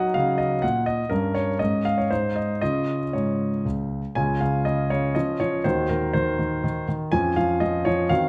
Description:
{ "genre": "classical-period piano sonatina", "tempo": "121 BPM", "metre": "3/4", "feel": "rubato", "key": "Db major", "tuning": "A4 = 440 Hz", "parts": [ { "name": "clear grand piano", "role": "solo", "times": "0.0-8.3 s", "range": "Db2 to Ab5", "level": "-24 LUFS", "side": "equal", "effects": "none" } ], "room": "moderate recital hall reverb, RT60 1.5 s", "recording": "close, detailed microphones", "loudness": "-24 LUFS", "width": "mono", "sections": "0.0-4.2 A section; 4.2-8.3 B section", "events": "none", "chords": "0.0 Ebm; 1.1 Gdim; 1.6 Db5/Ab; 2.1 Ab; 2.6 Db; 5.2 Db/F; 5.6 Ebm6; 7.1 Db/F", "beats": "0.15 0.63 | 1.11 1.60 2.10 | 2.61 3.13 3.65 | 4.16 4.66 5.15 | 5.64 6.14 6.63 | 7.13 7.62 8.11" }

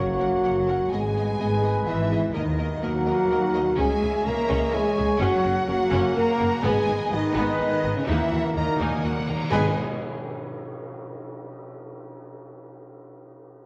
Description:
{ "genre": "cinematic, epic orchestral film score", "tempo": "126 BPM", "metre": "3/4", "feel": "straight", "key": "G# minor", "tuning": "A4 = 440 Hz", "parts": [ { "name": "warm symphonic violin section", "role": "melody", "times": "0.0-9.8 s", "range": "D#5 to A#5", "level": "-40 LUFS", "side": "equal", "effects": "none" }, { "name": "mellow large flute ensemble", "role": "second line", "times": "0.0-9.8 s", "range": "C#5 to A#5", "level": "-35 LUFS", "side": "equal", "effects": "none" }, { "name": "warm symphonic violin section", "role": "second line", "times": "0.0-9.8 s", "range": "C#5 to A#5", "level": "-38 LUFS", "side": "equal", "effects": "none" }, { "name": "warm symphonic viola section", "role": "accompaniment", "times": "0.0-9.8 s", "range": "A#3 to A#4", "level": "-35 LUFS", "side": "equal", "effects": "none" }, { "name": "brilliant trombone section", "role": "sustained chords", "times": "0.0-9.7 s", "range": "B2 to A#3", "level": "-37 LUFS", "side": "equal", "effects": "none" }, { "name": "mellow French horn section", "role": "sustained chords", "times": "0.0-9.7 s", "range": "C#4 to A#4", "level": "-28 LUFS", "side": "equal", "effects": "none" }, { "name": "mellow trumpet", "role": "stabs", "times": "0.0-9.7 s", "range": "A#4 to C#5", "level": "-35 LUFS", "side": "equal", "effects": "none" }, { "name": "warm studio double bass section", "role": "bass", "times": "0.0-9.8 s", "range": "F#1 to D#2", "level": "-31 LUFS", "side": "equal", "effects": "none" }, { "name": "warm symphonic cello section", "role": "bass", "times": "0.0-9.8 s", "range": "C#3 to A#3", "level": "-32 LUFS", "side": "equal", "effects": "none" }, { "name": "cymbal swell and tam-tam", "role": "percussion", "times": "6.6-11.4 s", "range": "none", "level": "-40 LUFS", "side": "equal", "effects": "none" }, { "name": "timpani", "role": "percussion", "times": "6.6-9.7 s", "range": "G#2 to D#3", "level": "-35 LUFS", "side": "equal", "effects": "none" } ], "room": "wet concert hall reverb, RT60 1.9 s", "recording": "worn, warbling old tape, cassette tape, warbly pitch drift", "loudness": "-24 LUFS", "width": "mono", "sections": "0.0-9.5 A section; 9.5-11.0 B section", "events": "timpani fill 8.1-9.5; band accent 9.5-10.0", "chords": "0.0 F#; 0.9 G#m; 2.3 D#m; 3.8 C#m; 5.2 F#; 6.7 G#m; 8.1 D#m; 9.5 G#m", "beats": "0.44 | 0.92 1.39 1.87 | 2.35 2.83 3.31 | 3.78 4.26 4.74 | 5.22 5.70 6.17 | 6.65 7.13 7.61 | 8.09 8.56 9.04 | 9.52 10.00 10.48" }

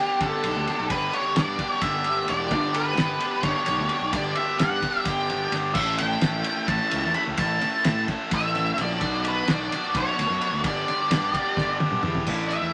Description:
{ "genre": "psychedelic rock", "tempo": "258 BPM (eighths)", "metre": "7/8", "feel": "straight", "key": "G lydian", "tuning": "A4 = 443 Hz", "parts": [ { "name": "octave-fuzz lead guitar", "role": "melody", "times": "0.0-12.7 s", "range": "G4 to B5", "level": "-28 LUFS", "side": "equal", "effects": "distortion" }, { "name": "cranked stack guitar", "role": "riff", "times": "0.0-12.7 s", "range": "G2 to A4", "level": "-30 LUFS", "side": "equal", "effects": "overdrive" }, { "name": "fuzz fingered electric bass", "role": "bass", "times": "0.2-12.7 s", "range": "E1 to A2", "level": "-33 LUFS", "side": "equal", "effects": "overdrive" }, { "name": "cloth-damped thuddy drum kit", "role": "drums", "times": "0.2-12.6 s", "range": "crash cymbal, hi-hat, kick drum, ride cymbal, snare drum, toms", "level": "-31 LUFS", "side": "equal", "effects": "none" } ], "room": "moderate studio reverb, RT60 0.6 s", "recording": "none", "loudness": "-24 LUFS", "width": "mono", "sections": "0.0-12.3 A section", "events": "drum fill 11.6-12.3", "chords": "0.0 G; 5.8 A; 9.0 Bm; 10.6 G", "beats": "0.20 0.43 0.66 | 0.90 1.12 1.36 1.59 1.82 2.05 2.28 | 2.51 2.74 2.97 3.21 3.44 3.67 3.90 | 4.13 4.36 4.59 4.83 5.06 5.29 5.52 | 5.75 5.99 6.22 6.45 6.68 6.92 7.15 | 7.38 7.61 7.85 8.08 8.31 8.54 8.78 | 9.01 9.24 9.47 9.71 9.94 10.17 10.40 | 10.64 10.87 11.10 11.33 11.57 11.80 12.03 | 12.27 12.50" }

